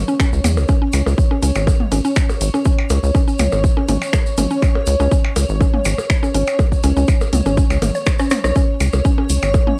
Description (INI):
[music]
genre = minimal techno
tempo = 122 BPM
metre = 4/4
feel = straight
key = unclear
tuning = A4 = 441 Hz
[part]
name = rubbery square bass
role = bass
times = 0.0-9.6 s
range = G#1 to E2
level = -20 LUFS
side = equal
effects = sidechain pumping
[part]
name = granular cloud pad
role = texture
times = 0.0-9.8 s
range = C#5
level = -27 LUFS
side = equal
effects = built-in reverb, sidechain pumping, cassette tape
[part]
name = mallet-like synth pluck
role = riff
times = 0.1-9.7 s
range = C#4 to C#5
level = -26 LUFS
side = equal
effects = chorus, sidechain pumping, cassette tape, tape echo
[part]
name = tube shaker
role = percussion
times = 0.1-9.6 s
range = none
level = -34 LUFS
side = equal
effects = none
[part]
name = electronic kick drum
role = drums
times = 0.2-9.6 s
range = none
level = -18 LUFS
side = equal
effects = overdrive
[part]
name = house drum kit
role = drums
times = 0.2-9.4 s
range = finger snaps, hi-hat, rim click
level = -27 LUFS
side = equal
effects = overdrive
[part]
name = electronic percussion blips and toms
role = percussion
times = 0.2-9.8 s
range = none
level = -27 LUFS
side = equal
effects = overdrive, tape echo
[sound]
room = moderate studio reverb, RT60 0.5 s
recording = home recording on cassette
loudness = -17 LUFS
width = mono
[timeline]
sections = 0.0-9.8 A section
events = drum fill 8.1-8.6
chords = 0.0 C#5